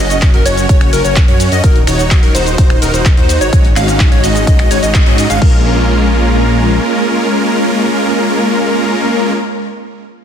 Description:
EDM, festival progressive house; 127 BPM; 4/4; straight; Bb minor; A4 = 440 Hz
plucky unison lead; arpeggios; 0.0-9.3 s; Bb4 to F5; -20 LUFS; equal; phaser, sidechain pumping, ping-pong delay
supersaw chords; riff; 0.0-9.3 s; Ab3 to F5; -14 LUFS; equal; sidechain pumping, ping-pong delay
wide detuned saw bass; bass; 0.0-6.8 s; Eb1 to Ab2; -16 LUFS; equal; chorus, sidechain pumping
big-room dance drum kit; drums; 0.1-5.5 s; crash cymbal, finger snaps, handclaps, hi-hat, ride cymbal, shaker; -19 LUFS; left 1 dB; soft clipping on snare
electronic kick drum; drums; 0.2-5.5 s; -9 LUFS; equal
light reverb, digital ambience; dense, heavily limited modern master; -9 LUFS; side -8 dB against mid
0.0-5.4 A section; 5.4-9.2 B section
drop 0.0-5.4; band accent 4.9
0.0 Gb; 1.6 Ebm; 3.5 Ab7sus4; 5.4 Bbm7

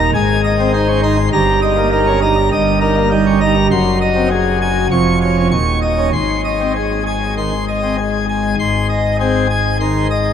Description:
classical, organ toccata; 100 BPM; 4/4; straight; Ab major; A4 = 439 Hz
pipe organ, plenum; solo; 0.0-10.3 s; Eb1 to Db6; -13 LUFS; equal
wet huge ambient reverb, RT60 8.1 s; in a vast, echoing space; -13 LUFS; side -8 dB against mid
0.0-8.6 A section; 8.6-10.3 A section
0.1 Ab; 1.3 Eb/G; 3.7 Ab7/Gb; 4.9 Db/F; 5.5 Dbsus2/Eb; 6.1 Ab

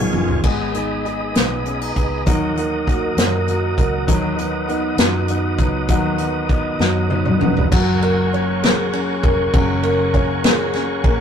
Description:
six-eight pop ballad; 66 BPM (dotted quarters); 6/8; straight; F# major; A4 = 438 Hz
warm upright piano; accompaniment; 0.0-11.2 s; C#3 to C#5; -23 LUFS; right 4 dB
tonewheel organ; sustained chords; 0.0-11.2 s; G#4 to D#6; -26 LUFS; equal; chorus vibrato, fast rotary speaker
fingerpicked steel-string acoustic guitar; arpeggios; 0.0-11.2 s; F#3 to G#4; -23 LUFS; left 5 dB
vintage muted fingered electric bass; bass; 0.0-11.2 s; E#1 to F#2; -25 LUFS; equal
unplugged drum kit; drums; 0.1-11.2 s; crash cymbal, hi-hat, kick drum, ride cymbal, snare drum, toms; -19 LUFS; equal
moderate studio reverb, RT60 0.5 s; rough rehearsal-room recording, tube saturation; -16 LUFS; side -8 dB against mid
0.4-7.7 A section; 7.7-11.2 B section
drum fill 0.0-0.4, 6.8-7.7
0.4 G#m; 2.3 D#m; 4.1 B; 7.7 F#add9

